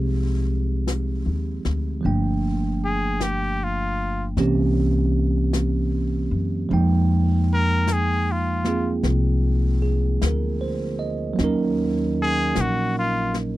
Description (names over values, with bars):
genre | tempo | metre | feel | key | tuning
jazz ballad | 51 BPM | 4/4 | swing 67% on 8ths | F minor | A4 = 439 Hz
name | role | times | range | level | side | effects
bell-like tine electric piano | accompaniment | 0.0-13.6 s | E3 to G5 | -24 LUFS | right 4 dB | none
upright bass | bass | 0.0-13.6 s | G1 to Gb2 | -23 LUFS | left 1 dB | none
jazz brush drum kit | drums | 0.9-13.6 s | brushed snare drum, hi-hat, snare drum | -33 LUFS | left 3 dB | none
trumpet with straight mute | melody | 2.8-13.4 s | F4 to Bb4 | -24 LUFS | left 2 dB | none
room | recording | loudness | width
little or no reverb | dry, close 1970s-style studio recording | -20 LUFS | side -16 dB against mid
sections
0.0-13.6 A section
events
muted trumpet solo 0.0-13.6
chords
0.0 Fm7; 2.0 Gm9; 4.4 C7b9; 6.7 Fm11; 11.4 Ebm7